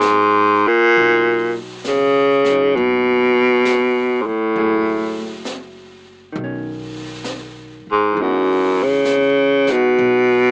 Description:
jazz ballad; 67 BPM; 4/4; swing 68% on 8ths; B major; A4 = 441 Hz
warm baritone saxophone; melody; 0.0-10.5 s; F#2 to C#3; -16 LUFS; equal; cassette tape
hollow-body jazz guitar; accompaniment; 0.0-10.5 s; D#3 to G#4; -32 LUFS; equal; cassette tape
jazz brush drum kit; drums; 0.0-10.5 s; brushed snare drum, hi-hat, snare drum; -35 LUFS; equal; cassette tape
upright bass; bass; 1.0-10.5 s; F#1 to E2; -38 LUFS; equal
light reverb; home recording on cassette, small speaker sound; -16 LUFS; mono
0.9-10.5 A section
0.0 F#9; 0.9 B; 4.6 F#m9; 6.4 Badd9; 8.2 Emaj9

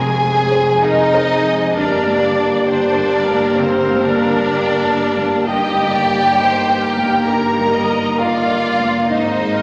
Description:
cinematic; 66 BPM; 4/4; rubato; A4 = 441 Hz
rich studio violin section; melody; 0.0-9.6 s; C5 to Bb5; -26 LUFS; equal
dark clarinet; second line; 0.0-9.6 s; C4 to Bb4; -29 LUFS; equal
flute section; second line; 0.0-9.6 s; C5 to Bb5; -24 LUFS; equal
rich studio violin section; second line; 0.0-9.6 s; C4 to Bb4; -22 LUFS; equal
felt-muted upright piano; accompaniment; 0.0-9.6 s; F2 to Ab5; -26 LUFS; equal
rich studio viola section; accompaniment; 0.0-9.6 s; G4 to Eb5; -27 LUFS; equal
warm French horn section; sustained chords; 0.0-9.6 s; Bb3 to Ab4; -22 LUFS; equal
rich studio cello section; bass; 0.0-9.6 s; F2 to Ab2; -32 LUFS; equal
warm studio double bass section; bass; 0.0-9.6 s; F1 to Ab1; -29 LUFS; equal
wet recital hall reverb, RT60 1.5 s; -16 LUFS; mono
0.0-9.6 A section
0.0 Fm; 1.8 Gm; 5.5 Eb/G; 9.1 Ab

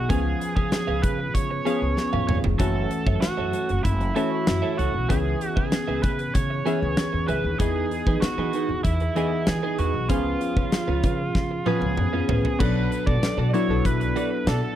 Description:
1980s-style pop; 96 BPM; 4/4; straight; A4 = 438 Hz
biting lead guitar; melody; 0.0-14.8 s; E4 to D5; -29 LUFS; right 3 dB; overdrive
chorused retro synth keys; accompaniment; 0.0-14.8 s; E3 to D#5; -27 LUFS; left 2 dB
upright bass; bass; 0.0-14.6 s; E#1 to E3; -27 LUFS; equal
twelve-string electric guitar; riff; 0.1-14.7 s; C#4 to E#5; -32 LUFS; right 5 dB; wide subtle chorus
huge arena drum kit; drums; 0.1-14.6 s; crash cymbal, hi-hat, kick drum, snare drum, toms; -26 LUFS; equal
small room ambience; dry, close 1970s-style studio recording; -21 LUFS; side -11 dB against mid
0.0-12.6 A section; 12.6-14.8 B section
drum fill 2.0-2.6, 11.3-12.6
0.1 C#7; 2.6 F#m7; 5.1 C#m7; 7.6 Emaj7; 10.1 C#7; 12.6 Bm7

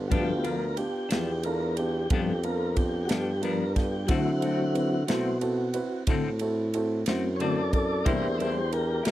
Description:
slow blues; 60 BPM (dotted quarters); 12/8; straight; A4 = 440 Hz
dark upright piano; accompaniment; 0.0-9.1 s; B3 to C5; -33 LUFS; right 4 dB
breathy tuba; bass; 0.0-9.1 s; D2 to D3; -29 LUFS; equal
clean electric guitar; accompaniment; 0.1-9.1 s; G2 to F#4; -32 LUFS; left 6 dB; harmonic tremolo
mellow tonewheel organ; sustained chords; 0.1-9.1 s; F#3 to D5; -30 LUFS; left 1 dB; slow rotary speaker
natural country drum kit; drums; 0.1-9.1 s; kick drum, ride cymbal, snare drum; -29 LUFS; equal
small room ambience; dry, close 1970s-style studio recording; -25 LUFS; side -14 dB against mid
0.0-9.1 A section
tonewheel organ solo 0.0-9.1
0.0 G7; 4.1 D7; 8.1 C7

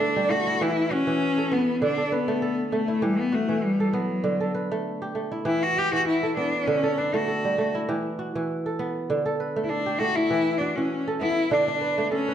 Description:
west african traditional, West African string and xylophone music; 99 BPM; 4/4; swing 54% on 16ths; D major; A4 = 440 Hz
clear cello; melody; 0.0-12.3 s; F#3 to G4; -24 LUFS; left 2 dB
kora; arpeggios; 0.0-12.3 s; D3 to B4; -26 LUFS; right 2 dB
wet recital hall reverb, RT60 1.4 s; dark, warm production, nothing above 10.9 kHz; -22 LUFS; side -9 dB against mid
0.0-11.5 A section
cello solo 0.0-11.5
0.0 D5; 0.6 Em; 1.8 D5; 3.0 Em; 4.2 D5; 5.5 Em; 6.7 D; 7.9 Em; 9.1 D5; 10.3 Em; 11.5 D5

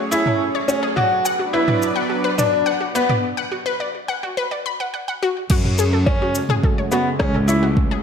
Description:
piano and strings electronica; 106 BPM; 4/4; straight; F# minor; A4 = 440 Hz
lush unison pad; sustained chords; 0.0-8.0 s; C#3 to D5; -25 LUFS; right 2 dB; chorus, sidechain pumping
analog pluck; arpeggios; 0.0-8.0 s; F#4 to B5; -24 LUFS; left 3 dB; chorus, sidechain pumping, ping-pong delay
bright upright piano; riff; 0.1-7.6 s; B3 to F#4; -20 LUFS; left 1 dB; ping-pong delay
deep house drum kit; drums; 0.1-7.6 s; crash cymbal, rim click, shaker, toms; -25 LUFS; right 1 dB; studio reverb
bright studio cello section; bass; 5.5-8.0 s; C#2 to F#2; -21 LUFS; left 1 dB; sidechain pumping
electronic kick drum; drums; 5.5-7.9 s; -19 LUFS; equal; studio reverb
moderate echo chamber reverb, RT60 1.4 s, digital ambience; -17 LUFS; side -7 dB against mid
0.0-5.5 A section; 5.5-8.0 B section
build-up 0.0-5.5; break 3.2-5.5; drop 5.5-8.0
0.0 F#madd9; 1.0 Bm; 5.5 F#madd9

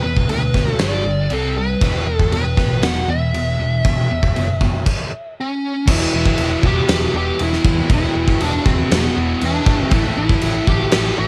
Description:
hard rock; 118 BPM; 4/4; straight; E minor; A4 = 438 Hz
smooth overdriven lead guitar; melody; 0.0-11.3 s; B3 to F#5; -24 LUFS; equal; cassette tape
distorted electric guitar; riff; 0.0-11.3 s; E2 to C4; -26 LUFS; equal; distortion, cassette tape
heavy high-gain guitar; riff; 0.0-11.3 s; E2 to C4; -31 LUFS; equal
picked electric bass; bass; 0.0-11.3 s; E1 to E2; -24 LUFS; equal
gated 80s drum kit; drums; 0.2-11.0 s; crash cymbal, kick drum, snare drum; -21 LUFS; equal; cassette tape
little or no reverb; home recording on cassette; -17 LUFS; mono
0.0-5.9 A section; 5.9-11.3 B section
stop 4.9-5.9
0.0 E5; 0.8 G5; 1.3 C5; 1.8 E5; 4.9 N.C.; 5.9 E5; 9.9 A5

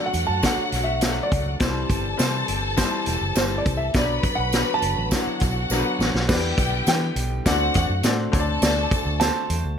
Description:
uptempo 1960s-style soul; 103 BPM; 4/4; straight; A4 = 439 Hz
dark grand piano; melody; 0.0-9.8 s; B4 to A5; -28 LUFS; right 2 dB
warm studio string section; second line; 0.0-9.5 s; F#4 to B5; -27 LUFS; left 3 dB
bright upright piano; accompaniment; 0.0-9.6 s; F#3 to D5; -29 LUFS; left 4 dB
tonewheel organ; sustained chords; 0.0-9.8 s; D3 to G4; -33 LUFS; right 1 dB; overdrive, chorus vibrato, slow rotary speaker
vintage muted fingered electric bass; bass; 0.1-9.8 s; E1 to E3; -26 LUFS; equal
vintage drum kit; drums; 0.1-9.6 s; crash cymbal, hi-hat, kick drum, snare drum; -24 LUFS; equal
tambourine; percussion; 0.1-9.6 s; -36 LUFS; right 7 dB
moderate studio reverb, RT60 0.6 s; -20 LUFS; side -8 dB against mid
0.0-6.3 A section; 6.3-9.8 B section
grand piano solo 0.0-6.3; drum fill 5.7-6.3
0.0 D; 1.6 C; 3.9 Bm; 6.3 Em7; 7.5 D7

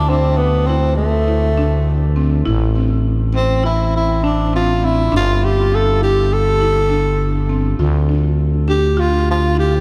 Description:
progressive instrumental, band music in an uneven meter; 203 BPM (eighths); 9/8; straight; D minor; A4 = 440 Hz
growling tenor saxophone; melody; 0.0-9.8 s; A3 to A4; -20 LUFS; equal; analog delay
growling FM bass; bass; 0.0-9.8 s; G1 to D2; -18 LUFS; equal
buzzing marimba with medium mallets; arpeggios; 0.1-9.8 s; C4 to F4; -26 LUFS; equal; analog delay
moderate cathedral reverb, RT60 6.7 s; dreamy mix soaked in reverb; -16 LUFS; mono
0.0-9.8 A section
0.0 Dsus2; 2.5 Am; 5.1 G5; 7.8 Dm

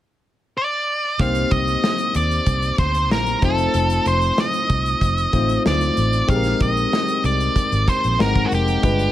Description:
polished 1980s jazz-funk pop; 94 BPM; 4/4; straight; C minor; A4 = 440 Hz
octave-fuzz lead guitar; melody; 0.6-9.1 s; Gb4 to F5; -21 LUFS; right 1 dB; distortion
barky tine electric piano; accompaniment; 1.2-9.1 s; G3 to Gb5; -23 LUFS; left 3 dB; overdrive, wide subtle chorus
vintage muted fingered electric bass; bass; 1.2-9.1 s; F1 to Eb2; -22 LUFS; equal
modern studio drum kit; drums; 1.2-9.1 s; hi-hat, kick drum, snare drum; -23 LUFS; equal; gated reverb
small room reverb; -17 LUFS; side -13 dB against mid
0.0-1.2 A section; 1.2-9.1 B section
0.0 N.C.; 1.2 Cm9; 3.4 F7; 6.3 Bb13sus4; 8.2 Ab9

